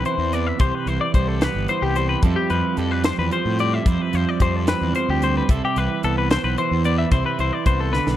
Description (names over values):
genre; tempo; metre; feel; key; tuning
math rock and midwest emo; 74 BPM (dotted quarters); 6/8; straight; C major; A4 = 440 Hz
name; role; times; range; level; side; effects
twelve-string electric guitar; accompaniment; 0.0-8.2 s; F2 to G4; -24 LUFS; right 8 dB; none
twelve-string electric guitar; arpeggios; 0.0-8.2 s; G4 to E5; -23 LUFS; left 6 dB; spring reverb
fuzz fingered electric bass; bass; 0.0-8.2 s; G1 to A2; -23 LUFS; left 1 dB; overdrive
crisp fusion drum kit; drums; 0.1-8.2 s; hi-hat, kick drum, snare drum; -20 LUFS; equal; none
room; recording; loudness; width
small room ambience; dry, close 1970s-style studio recording; -18 LUFS; side -12 dB against mid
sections
0.0-8.2 A section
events
drum fill 7.9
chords
0.0 Cmaj7; 0.6 Am9/C (rootless); 2.2 Fmaj9; 5.5 Cmaj7